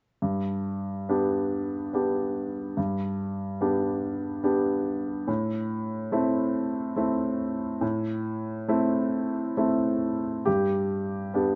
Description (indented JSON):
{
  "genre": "neoclassical minimalist piano",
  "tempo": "71 BPM",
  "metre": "3/4",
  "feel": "rubato",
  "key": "unclear",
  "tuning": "A4 = 440 Hz",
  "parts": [
    { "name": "clear grand piano", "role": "solo", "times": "0.2-11.6 s", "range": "G2 to G4", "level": "-28 LUFS", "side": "equal", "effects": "none" }
  ],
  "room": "moderate stone room reverb, RT60 1.0 s",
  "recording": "band playing live in one room, nothing above 7.7 kHz",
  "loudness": "-28 LUFS",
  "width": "mono",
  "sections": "0.2-10.5 A section; 10.5-11.6 B section",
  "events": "none",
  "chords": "0.2 G; 5.3 Am; 10.5 G",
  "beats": "| 0.21 1.08 1.93 | 2.77 3.61 4.44 | 5.28 6.12 6.97 | 7.82 8.69 9.57 | 10.46 11.34"
}